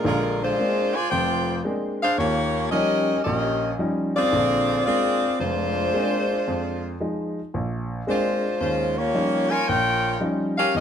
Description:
jazz; 112 BPM; 4/4; swing 68% on 8ths; Bb major; A4 = 440 Hz
clear saxophone section; melody; 0.0-10.8 s; Ab3 to Ab5; -22 LUFS; left 1 dB; plate reverb
warm upright piano; accompaniment; 0.0-10.8 s; F1 to Eb4; -26 LUFS; equal
wet large studio reverb, RT60 0.8 s; dark, warm production; -21 LUFS; side -8 dB against mid
0.0-10.8 A section
0.0 Bb9; 2.2 Eb9; 4.3 Bb9; 6.5 Fm7; 7.5 Bb9; 8.6 Eb9

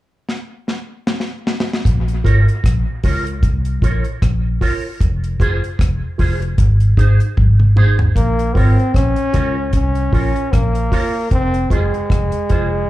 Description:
roots reggae; 76 BPM; 4/4; swing 56% on 16ths; Bb minor; A4 = 435 Hz
deep reggae drum kit; drums; 0.3-12.7 s; hi-hat, kick drum, rim click, snare drum, toms; -17 LUFS; equal
vintage muted fingered electric bass; bass; 1.9-12.9 s; F1 to Db2; -15 LUFS; equal
electric guitar with an envelope filter; accompaniment; 2.2-12.8 s; Eb4 to Db5; -25 LUFS; right 4 dB; ensemble chorus, dub echo, plate reverb, slapback echo
clear trombone; melody; 8.2-12.9 s; Ab3 to Db4; -19 LUFS; equal; dub echo, plate reverb, slapback echo
light reverb; live gig heard through the venue's PA, club reverb; -14 LUFS; side -16 dB against mid
0.0-1.9 A section; 1.9-8.2 B section; 8.2-12.9 C section
drum fill 0.3-1.9, 7.4-8.2
0.0 N.C.; 1.9 Bbm; 5.0 Fm; 6.6 Ab; 8.2 Bbm; 11.3 Fm

